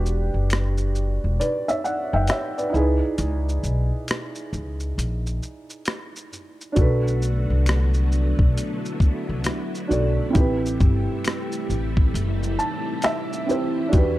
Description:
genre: lo-fi hip hop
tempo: 67 BPM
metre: 4/4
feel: swing 64% on 16ths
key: unclear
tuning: A4 = 439 Hz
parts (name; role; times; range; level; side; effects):
- felt-muted upright piano; accompaniment; 0.0-14.2 s; C4 to A5; -26 LUFS; right 2 dB; cassette tape, low-pass filter
- upright bass; bass; 0.0-14.2 s; E1 to E2; -22 LUFS; equal; none
- boom bap sampler-style drum kit; drums; 0.1-14.2 s; hi-hat, kick drum, rim click, shaker; -22 LUFS; equal; none
- finger snaps; percussion; 0.5-13.3 s; none; -39 LUFS; left 6 dB; none
- string machine, violins; sustained chords; 6.8-14.2 s; C3 to F#4; -30 LUFS; left 1 dB; ensemble chorus, low-pass filter
room: small room ambience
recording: dark, warm production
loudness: -20 LUFS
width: side -16 dB against mid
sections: 0.0-14.2 A section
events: break 0.0-6.8; felt piano fill 12.1-13.9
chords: 0.0 Em7; 2.7 C#m7; 6.8 Bm7; 10.3 Am7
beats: 0.50 1.39 2.29 | 3.18 4.08 4.97 5.87 | 6.77 7.66 8.56 9.45 | 10.35 11.24 12.14 13.03 | 13.93

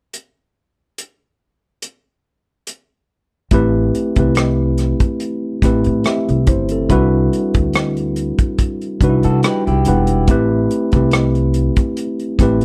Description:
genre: R&B, neo-soul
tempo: 71 BPM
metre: 4/4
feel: swing 54% on 16ths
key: A dorian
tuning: A4 = 441 Hz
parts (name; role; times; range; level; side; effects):
- warm soul drum kit; drums; 0.1-12.6 s; hi-hat, kick drum, rim click; -19 LUFS; equal; none
- mellow tine electric piano; accompaniment; 3.5-12.6 s; G3 to F#5; -19 LUFS; equal; none
- upright bass; bass; 3.5-12.6 s; E1 to C3; -20 LUFS; equal; none
- electric guitar through a small old amp; second line; 9.2-10.3 s; E4 to B4; -24 LUFS; equal; none
room: little or no reverb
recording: none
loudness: -16 LUFS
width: mono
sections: 0.1-3.5 A section; 3.5-12.6 B section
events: none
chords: 0.1 N.C.; 3.5 Am9; 6.9 Cmaj9#11; 10.3 Am9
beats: | 0.14 0.98 1.83 2.67 | 3.52 4.36 5.21 6.05 | 6.90 7.74 8.59 9.43 | 10.28 11.12 11.97

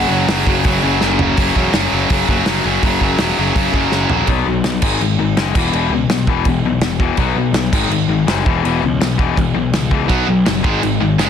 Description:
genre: punk rock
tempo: 165 BPM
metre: 4/4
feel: straight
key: unclear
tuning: A4 = 440 Hz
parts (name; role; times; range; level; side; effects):
- overdriven electric guitar; melody; 0.0-1.0 s; F#5; -24 LUFS; equal; none
- distorted electric guitar; riff; 0.0-4.3, 10.1-11.3 s; F#2 to B3; -18 LUFS; right 14 dB; overdrive
- tight distorted guitar; riff; 0.0-11.3 s; E2 to B3; -18 LUFS; left 11 dB; distortion
- fuzz picked electric bass; bass; 0.0-11.3 s; E1 to C#2; -20 LUFS; right 1 dB; overdrive
- loose indie drum kit; drums; 0.3-11.3 s; crash cymbal, hi-hat, kick drum, snare drum, toms; -19 LUFS; right 1 dB; soft clipping on snare
room: little or no reverb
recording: dense, heavily limited modern master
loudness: -13 LUFS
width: side -8 dB against mid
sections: 0.0-1.4 A section; 1.4-4.3 B section; 4.3-11.3 C section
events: drum fill 1.0-1.4, 3.9-4.3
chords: 0.0 F#5; 4.3 B5; 4.8 G#5; 5.6 E5; 7.2 B5; 7.7 G#5; 8.5 E5; 10.1 B5; 10.6 G#5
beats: 0.29 0.65 1.02 | 1.38 1.74 2.10 2.47 | 2.83 3.19 3.56 3.92 | 4.28 4.65 5.01 5.37 | 5.74 6.10 6.46 6.83 | 7.19 7.55 7.92 8.28 | 8.65 9.01 9.37 9.74 | 10.10 10.46 10.83 11.19

